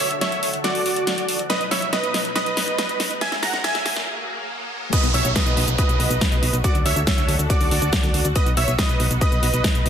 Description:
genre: uplifting trance.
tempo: 140 BPM.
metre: 4/4.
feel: straight.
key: B major.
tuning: A4 = 440 Hz.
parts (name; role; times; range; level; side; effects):
supersaw stab; melody; 0.0-9.9 s; F#4 to A#5; -24 LUFS; right 1 dB; sidechain pumping, dub echo.
warm concert grand piano; second line; 0.0-9.9 s; D6 to A#6; -31 LUFS; right 3 dB; sidechain pumping, tape echo.
analog string pad; sustained chords; 0.0-9.9 s; D2 to B4; -32 LUFS; equal; ensemble chorus, sidechain pumping.
big-room dance drum kit; drums; 0.0-9.9 s; crash cymbal, hi-hat, shaker, snare drum; -24 LUFS; left 1 dB; none.
riser and downlifter; sound effects; 1.3-8.4 s; none; -31 LUFS; right 1 dB; none.
electronic kick drum; drums; 4.9-9.7 s; none; -21 LUFS; equal; none.
solid FM bass; bass; 5.0-9.9 s; B1 to D2; -23 LUFS; equal; sidechain pumping.
room: moderate recital hall reverb, RT60 1.6 s, digital ambience.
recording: dense, heavily limited modern master, high-pass filter.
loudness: -18 LUFS.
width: side -8 dB against mid.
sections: 0.0-4.9 A section; 4.9-9.9 B section.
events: build-up 0.0-4.9; drum fill 0.0-4.1; riser 1.3-4.9; break 4.1-4.9; drop 4.9-9.9.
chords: 0.0 D; 1.5 B; 3.2 F#add9; 4.9 B; 6.6 D; 8.4 B.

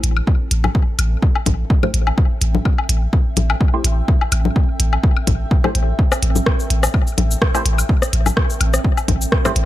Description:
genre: minimal techno.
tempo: 126 BPM.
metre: 4/4.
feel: swing 55% on 16ths.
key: A minor.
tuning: A4 = 444 Hz.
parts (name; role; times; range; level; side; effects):
punchy sub bass; bass; 0.0-9.7 s; A1; -17 LUFS; equal; sidechain pumping.
minimal click drum kit; drums; 0.0-9.7 s; hi-hat, rim click, shaker; -22 LUFS; right 1 dB; none.
granular cloud pad; texture; 0.1-9.7 s; C4 to G5; -31 LUFS; right 2 dB; built-in reverb, sidechain pumping.
electronic woodblock, congas and rim click; percussion; 0.2-9.5 s; none; -22 LUFS; left 5 dB; ping-pong delay.
electronic kick drum; drums; 0.3-9.4 s; none; -16 LUFS; equal; none.
filtered dub chord stab; stabs; 1.8-9.5 s; A3 to C5; -26 LUFS; right 1 dB; phaser, ping-pong delay.
room: little or no reverb.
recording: none.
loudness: -15 LUFS.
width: side -14 dB against mid.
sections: 0.0-9.7 A section.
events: fade-in on ambient pad 0.0-9.7.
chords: 0.0 Am7.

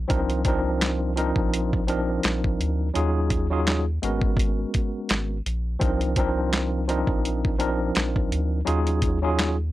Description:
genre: hip hop, boom-bap hip-hop.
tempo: 84 BPM.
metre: 4/4.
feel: swing 55% on 16ths.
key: C minor.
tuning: A4 = 441 Hz.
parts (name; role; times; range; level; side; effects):
soft dub sub bass; bass; 0.0-9.7 s; Ab1 to Eb2; -26 LUFS; equal; none.
barky tine electric piano; accompaniment; 0.1-9.6 s; F3 to Bb4; -25 LUFS; equal; fast stereo tremolo, cassette tape, high-pass filter, low-pass filter.
dusty soul sampler-style drum kit; drums; 0.1-9.6 s; handclaps, hi-hat, kick drum, snare drum; -25 LUFS; equal; none.
room: little or no reverb.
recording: dry, gritty hardware recording, transformer saturation.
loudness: -22 LUFS.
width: side -15 dB against mid.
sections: 0.0-9.7 A section.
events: none.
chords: 0.1 Cm11; 3.0 Ebm11; 4.0 Abm11; 5.8 Cm11; 8.7 Ebm11.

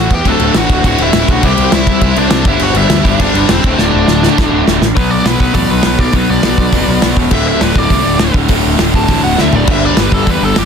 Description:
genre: punk rock.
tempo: 204 BPM.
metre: 4/4.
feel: straight.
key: D mixolydian.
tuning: A4 = 441 Hz.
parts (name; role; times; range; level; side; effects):
biting lead guitar; melody; 0.0-10.7 s; C4 to A5; -17 LUFS; right 1 dB; overdrive.
cranked stack guitar; riff; 0.0-10.7 s; D2 to C5; -17 LUFS; right 16 dB; overdrive.
overdriven electric guitar; riff; 0.0-10.7 s; D2 to C4; -16 LUFS; left 14 dB; none.
fuzz picked electric bass; bass; 0.0-10.7 s; D1 to E2; -16 LUFS; equal; overdrive.
loose indie drum kit; drums; 0.1-10.6 s; crash cymbal, hi-hat, kick drum, snare drum, toms; -14 LUFS; equal; none.
room: little or no reverb.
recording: dense, heavily limited modern master.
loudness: -9 LUFS.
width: side -7 dB against mid.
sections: 0.0-5.0 A section; 5.0-10.7 B section.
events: drum fill 3.8-5.0, 9.4; lead electric guitar solo 5.0-10.7.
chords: 0.3 D; 1.4 C; 2.5 G; 3.6 D; 5.0 Bm; 7.3 D5; 9.7 G5.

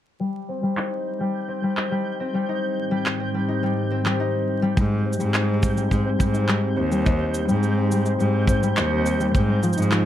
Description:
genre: folktronica.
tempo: 105 BPM.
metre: 4/4.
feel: straight.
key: Ab major.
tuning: A4 = 441 Hz.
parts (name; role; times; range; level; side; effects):
concert harp; arpeggios; 0.2-10.1 s; F3 to Eb4; -24 LUFS; left 1 dB; low-pass filter, tape echo.
flickering grainy texture; texture; 1.1-10.1 s; G6; -35 LUFS; right 4 dB; built-in reverb.
electronic handclaps and shaker; drums; 0.8-10.0 s; none; -27 LUFS; right 1 dB; low-pass filter on snare, low-pass filter on perc, low-pass filter on room.
warbly tape-like pad; sustained chords; 2.5-10.1 s; Ab2 to G4; -29 LUFS; left 1 dB; chorus, built-in reverb, vintage 12-bit sampler grit.
bright cello; bass; 4.8-10.1 s; Eb2 to Ab2; -22 LUFS; equal; none.
kick drum; drums; 4.8-9.5 s; none; -22 LUFS; equal; none.
room: light reverb.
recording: dark, warm production, vinyl crackle.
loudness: -20 LUFS.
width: side -11 dB against mid.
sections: 0.2-4.8 A section; 4.8-10.1 B section.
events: filter sweep on drum 0.2-4.8; filter sweep on harp 0.2-4.8, 4.8-10.1.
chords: 0.2 Abmaj7; 9.3 Fm7/Ab.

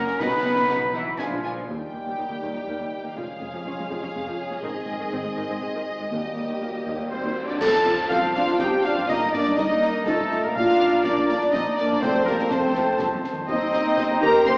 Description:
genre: cinematic, heroic adventure film score.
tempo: 122 BPM.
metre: 3/4.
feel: straight.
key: Eb mixolydian, F mixolydian from 7.6 s.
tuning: A4 = 440 Hz.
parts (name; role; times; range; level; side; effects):
warm symphonic violin section; melody; 0.0-14.6 s; A4 to C6; -32 LUFS; equal; none.
large flute ensemble; second line; 0.0-1.7, 7.6-14.6 s; E5 to B5; -31 LUFS; equal; none.
mellow clarinet; second line; 0.0-1.4, 7.6-14.6 s; C#4 to Eb5; -32 LUFS; equal; none.
warm oboe; second line; 0.0-1.4, 7.1-14.6 s; A4 to C6; -28 LUFS; equal; none.
warm symphonic violin section; second line; 0.0-14.6 s; D#4 to C6; -31 LUFS; equal; none.
dark symphonic viola section; accompaniment; 0.0-14.6 s; Eb3 to G4; -31 LUFS; equal; none.
concert harp; arpeggios; 0.0-14.6 s; F2 to D5; -40 LUFS; equal; none.
warm trumpet section; stabs; 0.0-1.7 s; E4 to B4; -26 LUFS; equal; none.
rich symphonic cello section; bass; 0.0-14.5 s; Eb2 to B3; -34 LUFS; equal; none.
rich symphonic double bass section; bass; 0.0-14.5 s; F1 to F#2; -39 LUFS; equal; none.
concert snare drum, concert bass drum and clash cymbals; drums; 0.1-1.4, 7.6-14.6 s; none; -34 LUFS; equal; none.
mellow French horn section; sustained chords; 0.2-14.6 s; F#3 to C5; -24 LUFS; equal; none.
cymbal swell, clash cymbals and concert bass drum; percussion; 4.6-8.6 s; none; -35 LUFS; equal; none.
timpani; percussion; 7.6-8.3, 12.0-12.7 s; F2; -40 LUFS; equal; none.
room: wet scoring stage reverb, RT60 1.7 s.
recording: heard from further back in the room, AM radio sound.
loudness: -21 LUFS.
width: side -35 dB against mid.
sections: 0.0-1.7 A section; 1.7-7.6 B section; 7.6-14.6 C section.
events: band accent 7.6-8.1.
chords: 0.2 B; 1.2 A#7; 1.7 Eb; 3.2 Db/F; 4.6 Ab; 6.1 Eb; 7.6 F; 9.1 Eb/G; 10.6 Bb; 12.0 F; 13.5 Cm/Eb.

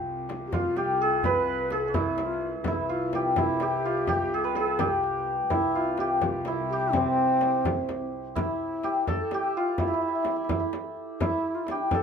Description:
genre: Persian modal ensemble.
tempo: 84 BPM (dotted quarters).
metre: 6/8.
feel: straight.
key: C dastgah chahargah.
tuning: A4 = 440 Hz.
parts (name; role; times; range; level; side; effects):
santur; melody; 0.0-12.0 s; C4 to B4; -26 LUFS; equal; none.
warm studio cello section; drone; 0.0-8.4 s; C2; -38 LUFS; equal; none.
frame drum; percussion; 0.3-12.0 s; none; -32 LUFS; left 3 dB; none.
tombak; percussion; 0.3-12.0 s; none; -36 LUFS; right 2 dB; none.
breathy reedy ney; second line; 0.5-12.0 s; C4 to C5; -32 LUFS; left 2 dB; none.
room: moderate studio reverb, RT60 0.6 s.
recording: minimal, uncompressed stereo recording.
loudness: -24 LUFS.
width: side -6 dB against mid.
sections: 0.0-8.4 A section; 8.4-12.0 B section.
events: none.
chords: none.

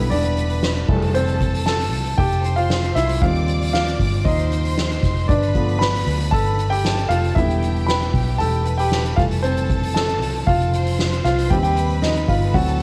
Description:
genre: piano-driven pop.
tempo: 116 BPM.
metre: 4/4.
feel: straight.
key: unclear.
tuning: A4 = 440 Hz.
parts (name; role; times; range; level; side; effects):
clear symphonic violin section; second line; 0.0-12.8 s; G4 to D6; -32 LUFS; equal; cassette tape, tape echo.
warm grand piano; accompaniment; 0.0-12.8 s; D3 to B5; -24 LUFS; equal; cassette tape.
vintage muted fingered electric bass; bass; 0.0-12.8 s; E1 to Eb2; -24 LUFS; equal; none.
soft-mallet drum kit; drums; 0.1-12.8 s; crash cymbal, hi-hat, kick drum, snare drum; -26 LUFS; equal; cassette tape.
room: light reverb.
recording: home recording on cassette.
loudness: -19 LUFS.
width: mono.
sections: 0.0-12.8 A section.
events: grand piano solo 0.0-12.8.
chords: 0.0 Em7; 0.9 Fmaj7; 3.2 Cm; 5.3 G7; 7.4 Em7; 9.2 Fmaj7; 11.5 Cm/Eb.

